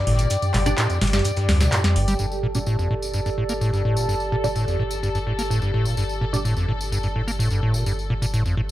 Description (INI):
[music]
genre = acid house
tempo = 127 BPM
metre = 4/4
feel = straight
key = unclear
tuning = A4 = 440 Hz
[part]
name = rich studio string section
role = sustained chords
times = 0.0-8.7 s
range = A4 to D5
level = -32 LUFS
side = left 4 dB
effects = low-pass filter
[part]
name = acid bass, square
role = riff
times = 0.0-8.6 s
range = F2 to Bb3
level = -23 LUFS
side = equal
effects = overdrive
[part]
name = warbly tape-like pad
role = texture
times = 0.0-8.7 s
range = G4 to A5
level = -30 LUFS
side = right 2 dB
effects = chorus, built-in reverb, phaser
[part]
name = round analog bass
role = bass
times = 0.1-8.7 s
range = G1 to D2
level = -27 LUFS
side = equal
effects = tube saturation
[part]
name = booming analog drum machine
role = drums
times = 0.1-2.2 s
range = handclaps, hi-hat, snare drum, toms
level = -24 LUFS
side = equal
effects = overdrive
[part]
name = breakbeat sampler-style drum kit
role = drums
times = 0.2-2.2 s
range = hi-hat, snare drum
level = -35 LUFS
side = right 1 dB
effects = none
[part]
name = tambourine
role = percussion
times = 0.2-8.6 s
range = none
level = -34 LUFS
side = left 2 dB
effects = none
[part]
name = filtered dub chord stab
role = stabs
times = 0.7-6.4 s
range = D4 to D5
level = -30 LUFS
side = right 3 dB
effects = phaser, ensemble chorus, dub echo
[sound]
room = light reverb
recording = dark, warm production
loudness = -20 LUFS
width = side -14 dB against mid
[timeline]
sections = 0.0-2.2 A section; 2.2-8.7 B section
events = drop 0.0-2.2; filter sweep on string section 2.2-8.7; filter sweep on synth stab 2.2-8.7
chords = 0.0 G5